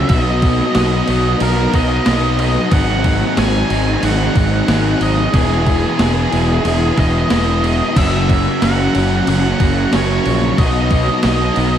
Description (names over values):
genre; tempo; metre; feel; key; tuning
rock, shoegaze and dream pop; 92 BPM; 4/4; straight; F# mixolydian; A4 = 442 Hz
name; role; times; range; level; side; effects
octave-fuzz lead guitar; melody; 0.0-11.8 s; G#4 to G#5; -21 LUFS; equal; distortion, diffuse ambient delay
biting overdriven guitar; riff; 0.0-11.8 s; E2 to G#4; -21 LUFS; right 6 dB; reverse reverb
overdriven electric guitar; riff; 0.0-11.8 s; E2 to B3; -22 LUFS; left 1 dB; none
overdriven semi-hollow guitar; riff; 0.0-11.8 s; F#2 to E4; -21 LUFS; left 6 dB; lush chorus
fuzz fingered electric bass; bass; 0.0-11.8 s; E1 to B1; -18 LUFS; equal; overdrive
gated 80s digital drum machine; drums; 0.1-11.7 s; crash cymbal, kick drum, snare drum; -19 LUFS; right 1 dB; gated reverb, gated reverb snare
room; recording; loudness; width
moderate lush hall reverb, RT60 2.0 s, digital ambience; dreamy mix soaked in reverb, vinyl crackle; -12 LUFS; side -9 dB against mid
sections
0.0-8.0 A section; 8.0-11.8 A section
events
none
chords
0.1 B; 2.7 G#5; 5.3 Emaj7; 8.0 F#; 10.6 B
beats
| 0.10 0.76 1.41 2.07 | 2.72 3.38 4.03 4.68 | 5.34 6.00 6.65 7.31 | 7.96 8.62 9.27 9.93 | 10.58 11.24